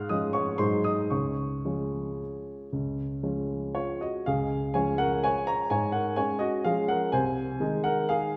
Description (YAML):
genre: classical, piano waltz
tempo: 108-133 BPM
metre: 3/4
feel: rubato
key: Db major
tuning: A4 = 440 Hz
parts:
  - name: warm baby grand piano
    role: solo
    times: 0.0-8.4 s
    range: C2 to F6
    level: -28 LUFS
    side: equal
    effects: none
room: wet recital hall reverb, RT60 1.4 s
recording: heard from further back in the room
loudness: -28 LUFS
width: mono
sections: 0.0-4.3 A section; 4.3-8.4 B section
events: none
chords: 0.0 Db/Ab; 0.6 Ab7; 1.1 Db; 7.1 Ab/C